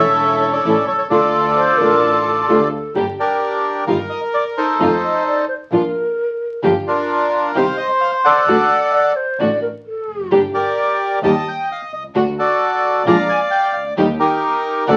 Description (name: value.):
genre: tango.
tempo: 131 BPM.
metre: 4/4.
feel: rubato.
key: G minor.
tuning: A4 = 440 Hz.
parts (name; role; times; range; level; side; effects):
bandoneon; melody; 0.0-15.0 s; D4 to Bb5; -18 LUFS; equal; none.
nylon-string guitar; accompaniment; 0.0-15.0 s; C3 to G4; -19 LUFS; equal; none.
warm studio string section; stabs; 0.0-15.0 s; G3 to A5; -25 LUFS; equal; none.
dark double bass; bass; 0.0-15.0 s; E1 to F2; -29 LUFS; equal; none.
mellow hollow concert flute; second line; 1.6-10.4 s; G4 to F#5; -22 LUFS; equal; none.
room: moderate studio reverb, RT60 0.6 s.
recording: very old 78 rpm record, vinyl crackle.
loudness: -17 LUFS.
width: mono.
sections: 0.0-3.0 A section; 3.0-15.0 B section.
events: none.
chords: 0.0 A; 1.1 Dm; 3.0 Gm; 3.9 Ebadd9/G; 4.8 F7; 5.7 Bb; 6.6 Gm7; 7.5 Cm; 8.5 D; 10.3 Gm; 11.2 Eb; 12.1 D; 13.1 Bb7; 14.0 Eb.